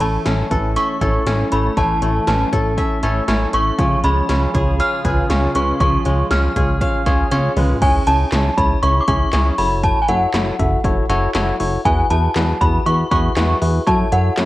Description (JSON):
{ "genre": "synth-pop", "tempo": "119 BPM", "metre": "4/4", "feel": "straight", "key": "unclear", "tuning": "A4 = 437 Hz", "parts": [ { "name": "synth chime", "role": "melody", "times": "0.0-14.5 s", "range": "F#5 to E#6", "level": "-20 LUFS", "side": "equal", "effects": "ensemble chorus, cassette tape" }, { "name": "bell-like tine electric piano", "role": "accompaniment", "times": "0.0-14.5 s", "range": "C#4 to E5", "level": "-22 LUFS", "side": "left 2 dB", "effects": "cassette tape" }, { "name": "lush unison pad", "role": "sustained chords", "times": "0.5-7.8 s", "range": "C#3 to G#4", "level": "-29 LUFS", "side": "right 2 dB", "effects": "chorus, cassette tape" }, { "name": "koto", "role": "arpeggios", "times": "0.0-9.8 s", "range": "E3 to E#5", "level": "-25 LUFS", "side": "equal", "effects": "cassette tape, analog delay" }, { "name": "chorused synth bass", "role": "bass", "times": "0.0-14.5 s", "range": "F#1 to F#2", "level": "-19 LUFS", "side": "equal", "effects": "none" }, { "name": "80s electronic pad drums", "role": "drums", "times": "0.0-14.5 s", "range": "crash cymbal, handclaps, hi-hat, kick drum, snare drum, toms", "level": "-22 LUFS", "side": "equal", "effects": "gated reverb on snare and toms, cassette tape" } ], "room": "light reverb, digital ambience", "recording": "home recording on cassette", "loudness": "-14 LUFS", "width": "side -16 dB against mid", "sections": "0.0-7.8 A section; 7.8-14.5 B section", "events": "drum fill 7.3-7.8", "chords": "0.0 A; 3.8 C#; 7.8 C#m; 9.6 F#m7; 11.9 Eadd9; 13.9 F#m7" }